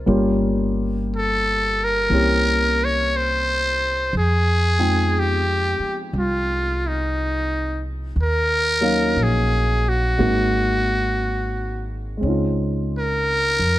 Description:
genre	jazz ballad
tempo	59 BPM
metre	4/4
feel	swing 66% on 8ths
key	unclear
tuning	A4 = 441 Hz
part	dark grand piano	accompaniment	0.0-13.8 s	E3 to G5	-24 LUFS	left 1 dB	none
part	upright bass	bass	0.0-13.8 s	G1 to F2	-23 LUFS	equal	none
part	trumpet with metal mute	melody	1.2-13.8 s	Eb4 to Db5	-20 LUFS	equal	none
room	light reverb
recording	none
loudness	-18 LUFS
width	side -15 dB against mid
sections	0.0-13.8 A section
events	none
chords	0.1 Gm7b5; 2.1 C7b9; 4.1 Fm9; 8.2 Ebm9; 10.2 Ab7; 12.2 Dbmaj7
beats	| 0.07 1.09 2.10 3.12 | 4.13 5.14 6.14 7.15 | 8.16 9.17 10.19 11.21 | 12.23 13.26

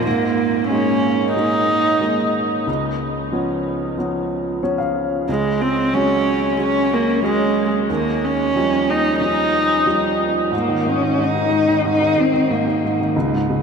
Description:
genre	acoustic folk-pop ballad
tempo	92 BPM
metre	4/4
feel	straight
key	unclear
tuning	A4 = 440 Hz
part	rich viola	second line	0.0-10.2 s	Ab3 to Eb4	-19 LUFS	right 1 dB	none
part	clear upright piano	accompaniment	0.0-13.6 s	Db2 to F5	-21 LUFS	equal	none
part	warm cello	melody	10.6-13.0 s	Bb3 to Eb4	-21 LUFS	left 2 dB	none
room	wet huge ambient reverb, RT60 7.4 s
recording	in a vast, echoing space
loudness	-16 LUFS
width	side -6 dB against mid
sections	0.1-10.5 A section; 10.5-13.6 B section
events	viola solo 0.1-10.5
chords	0.1 Absus2; 2.7 Db7; 5.3 Gbsus2/Db; 7.9 Ebadd9; 10.5 Ab5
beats	| 0.06 0.72 1.38 2.03 | 2.68 3.33 3.99 4.64 | 5.29 5.94 6.59 7.24 | 7.90 8.55 9.21 9.87 | 10.53 11.19 11.85 12.50 | 13.15

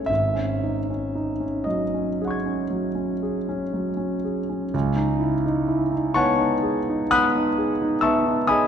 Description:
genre	classical, impressionist solo piano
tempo	37-46 BPM (dotted quarters)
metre	9/8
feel	rubato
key	C# minor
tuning	A4 = 437 Hz
part	warm concert grand piano	solo	0.0-8.7 s	G#1 to G#6	-21 LUFS	equal	none
room	wet concert hall reverb, RT60 2.1 s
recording	dark, warm production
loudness	-21 LUFS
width	side -8 dB against mid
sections	0.0-4.7 A section; 4.7-8.7 B section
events	none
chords	0.1 G#7sus4; 4.7 C#m9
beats	| 0.09 1.68 3.22 | 4.74 6.14 7.57

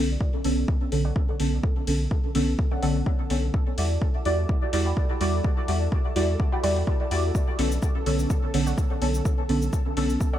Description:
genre	dub techno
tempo	126 BPM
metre	4/4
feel	swing 54% on 16ths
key	B minor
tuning	A4 = 440 Hz
part	deep mellow chord stab	stabs	0.0-10.2 s	D3 to D5	-26 LUFS	right 1 dB	chorus, phaser, sidechain pumping, dub echo
part	soft dub sub bass	bass	0.0-10.2 s	B1 to E2	-26 LUFS	equal	sidechain pumping
part	flickering grainy texture	texture	0.7-10.4 s	A4	-39 LUFS	right 1 dB	built-in reverb, sidechain pumping
part	electronic kick drum	drums	0.2-10.3 s	none	-25 LUFS	equal	none
part	electronic hi-hat and shaker	drums	0.4-10.3 s	none	-37 LUFS	left 3 dB	none
part	warbly dusty pluck	riff	1.0-10.4 s	A4 to B5	-37 LUFS	left 1 dB	chorus, phaser, sidechain pumping, dub echo
room	light reverb, digital ambience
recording	echo-heavy mix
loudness	-22 LUFS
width	side -11 dB against mid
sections	0.0-10.4 A section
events	none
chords	0.0 Bm9; 3.5 Em9; 7.3 Bm9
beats	0.21 0.68 1.16 | 1.64 2.11 2.59 3.06 | 3.54 4.02 4.49 4.97 | 5.44 5.92 6.40 6.87 | 7.35 7.83 8.30 8.78 | 9.25 9.73 10.21

